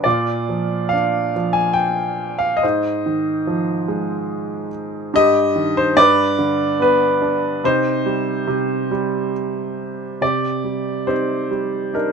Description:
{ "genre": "classical, lyrical solo piano", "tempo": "71 BPM", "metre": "3/4", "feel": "rubato", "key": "C minor", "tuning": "A4 = 440 Hz", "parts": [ { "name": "clear upright piano", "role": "solo", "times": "0.0-12.1 s", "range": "G2 to Ab5", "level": "-17 LUFS", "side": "right 1 dB", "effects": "none" } ], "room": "light reverb", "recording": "close, detailed microphones", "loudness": "-17 LUFS", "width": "side -6 dB against mid", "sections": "0.0-10.2 A section; 10.2-12.1 B section", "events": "none", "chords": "0.1 Bb; 2.6 Fm7/Ab; 5.1 Cm/G; 6.0 G; 7.6 Cm; 10.2 Cmadd9" }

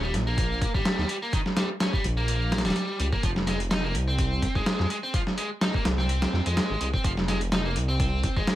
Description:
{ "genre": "breakbeat, breaks", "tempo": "126 BPM", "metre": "4/4", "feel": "swing 54% on 16ths", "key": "F minor", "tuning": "A4 = 440 Hz", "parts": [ { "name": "biting overdriven guitar", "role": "riff", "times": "0.0-8.6 s", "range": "Eb3 to Eb4", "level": "-30 LUFS", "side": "equal", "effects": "tube saturation, dub echo" }, { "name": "dark detuned saw bass", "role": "bass", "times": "0.0-8.4 s", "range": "Eb1 to F2", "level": "-27 LUFS", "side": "equal", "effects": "none" }, { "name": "dusty soul sampler-style drum kit", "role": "drums", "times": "0.1-8.6 s", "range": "hi-hat, kick drum, snare drum", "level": "-26 LUFS", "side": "equal", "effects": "overdrive" } ], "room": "little or no reverb", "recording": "vinyl crackle", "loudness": "-23 LUFS", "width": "side -14 dB against mid", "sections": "0.0-8.6 A section", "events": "none", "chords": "0.0 Eb (rootless); 3.2 Fm" }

